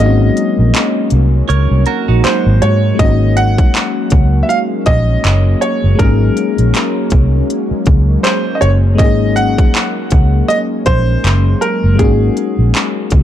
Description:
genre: contemporary R&B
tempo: 80 BPM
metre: 4/4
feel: swing 58% on 16ths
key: unclear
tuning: A4 = 440 Hz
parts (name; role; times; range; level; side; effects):
- clear grand piano; melody; 0.0-13.1 s; Ab4 to Gb5; -18 LUFS; right 2 dB; ping-pong delay
- FM electric piano; accompaniment; 0.0-13.2 s; Ab3 to Ab4; -19 LUFS; left 8 dB; chorus
- warm analog pad; sustained chords; 0.0-13.2 s; Gb3 to Db4; -20 LUFS; equal; chorus, sidechain pumping
- vintage muted fingered electric bass; bass; 0.0-13.2 s; Gb1 to Ab2; -12 LUFS; equal; none
- trap drum kit; drums; 0.4-13.2 s; handclaps, hi-hat, kick drum; -14 LUFS; equal; none
- direct-recorded clean electric guitar; arpeggios; 1.5-3.2 s; Eb4 to Db5; -20 LUFS; right 12 dB; phaser
room: little or no reverb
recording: dark, warm production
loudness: -10 LUFS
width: side -11 dB against mid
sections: 0.0-13.2 A section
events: break 0.0-3.0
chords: 0.0 Ab9sus4

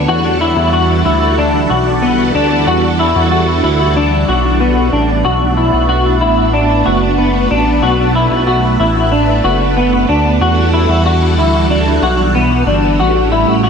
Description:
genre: dream pop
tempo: 93 BPM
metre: 4/4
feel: straight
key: unclear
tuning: A4 = 440 Hz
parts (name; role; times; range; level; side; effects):
- phased string machine; sustained chords; 0.0-13.7 s; E3 to A4; -17 LUFS; right 3 dB; ensemble chorus, phaser
- semi-hollow electric guitar; arpeggios; 0.0-13.7 s; B3 to F#4; -13 LUFS; left 2 dB; ensemble chorus, analog delay
- chorused synth bass; bass; 0.0-13.7 s; F#1 to E2; -15 LUFS; equal; none
room: moderate plate reverb, RT60 2.9 s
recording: echo-heavy mix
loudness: -10 LUFS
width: side -6 dB against mid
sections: 0.0-13.7 A section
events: none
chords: 0.1 Em11; 5.2 Bm7; 10.4 Em11; 13.0 A7

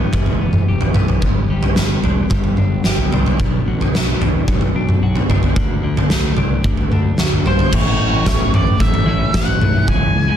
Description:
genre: quiet-loud alternative rock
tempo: 111 BPM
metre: 4/4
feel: straight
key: unclear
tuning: A4 = 441 Hz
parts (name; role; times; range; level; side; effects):
- twelve-string electric guitar; arpeggios; 0.0-10.4 s; E2 to G4; -22 LUFS; left 3 dB; none
- fuzz fingered electric bass; bass; 0.0-10.4 s; E1 to G2; -21 LUFS; equal; overdrive
- oversized low-tuned drum kit; drums; 0.1-10.0 s; crash cymbal, kick drum, snare drum, toms; -16 LUFS; equal; none
- octave-fuzz lead guitar; melody; 7.5-10.4 s; C5 to G#5; -21 LUFS; equal; distortion
room: moderate studio reverb, RT60 0.8 s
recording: dense, heavily limited modern master, lossy compression artefacts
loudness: -14 LUFS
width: side -9 dB against mid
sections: 0.0-7.7 A section; 7.7-10.4 B section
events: none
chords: 0.0 Em; 1.2 G; 3.4 Bm; 5.6 D; 7.7 A

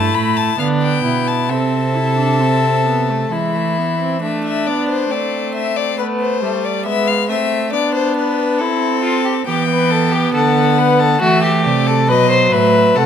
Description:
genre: classical, baroque-style fugue for string quartet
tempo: 68 BPM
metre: 3/4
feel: straight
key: A minor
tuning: A4 = 440 Hz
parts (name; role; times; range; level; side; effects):
- rich violin; melody; 0.0-13.1 s; A4 to B5; -20 LUFS; left 9 dB; none
- dark violin; second line; 0.0-13.1 s; A3 to C5; -18 LUFS; left 3 dB; none
- rich viola; accompaniment; 0.0-13.1 s; F#3 to E4; -21 LUFS; right 4 dB; none
- dark cello; bass; 0.0-4.2, 9.5-13.1 s; G2 to E3; -18 LUFS; right 5 dB; none
room: moderate scoring stage reverb, RT60 2.0 s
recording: close, detailed microphones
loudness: -14 LUFS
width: side -8 dB against mid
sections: 0.0-4.2 A section; 4.2-13.1 B section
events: none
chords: 0.0 N.C.; 0.6 Bm/D; 1.5 Am/C; 3.3 E; 4.2 Am; 6.0 Gadd9; 6.9 E7/G#; 8.6 Am/C; 9.5 Em; 11.2 F#m7b5/E; 12.1 B7

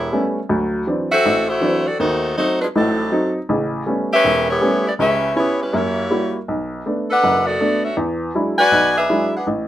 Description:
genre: jazz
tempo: 161 BPM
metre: 4/4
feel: swing 64% on 8ths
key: A major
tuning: A4 = 442 Hz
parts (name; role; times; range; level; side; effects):
- warm saxophone section; melody; 0.0-9.5 s; F#3 to G#5; -17 LUFS; left 1 dB; none
- warm upright piano; accompaniment; 0.0-9.7 s; E1 to F#4; -20 LUFS; equal; none
room: moderate studio reverb, RT60 0.5 s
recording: rough home demo mix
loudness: -16 LUFS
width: side -12 dB against mid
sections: 0.0-9.7 A section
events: none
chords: 0.0 A9; 0.5 D9; 2.0 D#dim7; 3.5 A9; 5.0 C#m7b5; 5.7 F#7b9; 6.5 Bm7; 8.0 E9

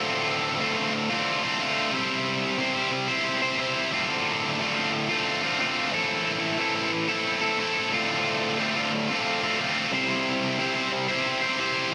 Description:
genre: rock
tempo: 90 BPM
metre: 3/4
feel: straight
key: D minor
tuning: A4 = 440 Hz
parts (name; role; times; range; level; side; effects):
- tight distorted guitar; solo; 0.0-11.9 s; D2 to C5; -25 LUFS; equal; distortion, analog delay
room: wet lush hall reverb, RT60 3.0 s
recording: big arena sound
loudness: -25 LUFS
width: mono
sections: 0.0-11.9 A section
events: none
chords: 0.0 Dm7; 1.9 C; 3.9 Dm7; 5.9 Am; 7.9 Dm7; 9.9 C

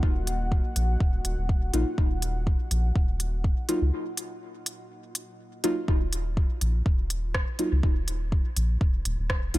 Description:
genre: dub techno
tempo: 123 BPM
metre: 4/4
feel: swing 55% on 16ths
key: Eb minor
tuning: A4 = 440 Hz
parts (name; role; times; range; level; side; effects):
- dark analog pad; sustained chords; 0.0-5.9 s; Bb3 to Gb5; -39 LUFS; left 1 dB; chorus, sidechain pumping
- round analog bass; bass; 0.0-9.6 s; Eb1 to Db2; -27 LUFS; equal; sidechain pumping
- electronic kick drum; drums; 0.0-9.4 s; none; -25 LUFS; equal; none
- deep house drum kit; drums; 0.3-9.6 s; hi-hat, rim click; -32 LUFS; equal; none
- deep mellow chord stab; stabs; 1.7-9.6 s; Gb3 to F4; -31 LUFS; equal; chorus, phaser, sidechain pumping, dub echo
room: digital ambience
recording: none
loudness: -24 LUFS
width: side -17 dB against mid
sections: 0.0-5.9 A section; 5.9-9.6 A section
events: break 3.9-5.9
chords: 0.0 Ebm; 5.9 Eb5

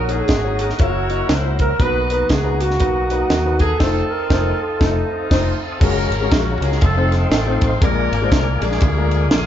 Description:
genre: uptempo gospel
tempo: 120 BPM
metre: 4/4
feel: swing 60% on 8ths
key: unclear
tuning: A4 = 440 Hz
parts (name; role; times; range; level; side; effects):
- breathy alto saxophone; melody; 0.0-5.6 s; Gb4 to B4; -22 LUFS; right 4 dB; none
- warm horn section; melody; 0.0-9.5 s; A3 to Db5; -25 LUFS; left 2 dB; none
- warm grand piano; accompaniment; 0.0-9.5 s; Bb2 to Eb5; -24 LUFS; left 4 dB; none
- mellow tonewheel organ; sustained chords; 0.0-9.5 s; Ab4 to Fb6; -28 LUFS; left 1 dB; fast rotary speaker, chorus vibrato
- fingered electric bass; bass; 0.0-9.5 s; F1 to D#2; -21 LUFS; equal; none
- tight funk drum kit; drums; 0.1-9.5 s; crash cymbal, hi-hat, kick drum, ride cymbal, snare drum; -19 LUFS; equal; none
room: moderate large studio reverb, RT60 1.3 s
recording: band playing live in one room, nothing above 7.6 kHz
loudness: -15 LUFS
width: side -10 dB against mid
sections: 0.0-5.8 A section; 5.8-9.5 B section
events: band accent 3.8-5.8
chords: 0.0 Ebm7/Bb; 0.8 Gb7; 1.8 Bmaj7; 3.8 F7; 5.8 Gbmaj9; 6.8 F7; 7.8 Bb7; 8.8 Bb7/D

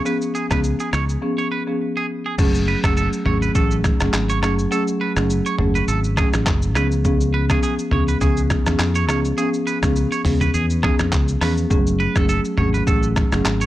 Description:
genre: afrobeats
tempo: 103 BPM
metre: 4/4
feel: swing 55% on 16ths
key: F# harmonic minor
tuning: A4 = 439 Hz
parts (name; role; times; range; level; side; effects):
- marimba with medium mallets; accompaniment; 0.0-13.5 s; E#3 to G#4; -22 LUFS; equal; none
- twangy electric guitar; riff; 0.1-13.7 s; G#4 to C#5; -26 LUFS; right 5 dB; analog delay
- trip hop sampler-style drum kit; drums; 0.1-13.7 s; crash cymbal, finger snaps, handclaps, hi-hat, kick drum, rim click, shaker, toms; -21 LUFS; equal; none
- fingered electric bass; bass; 0.5-13.7 s; F#1 to E#2; -21 LUFS; equal; none
room: little or no reverb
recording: dry, gritty hardware recording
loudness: -17 LUFS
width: side -15 dB against mid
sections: 0.0-2.4 A section; 2.4-13.7 B section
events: break 1.2-2.4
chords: 0.0 C#7; 2.4 F#madd9; 6.8 C#7; 11.7 F#madd9

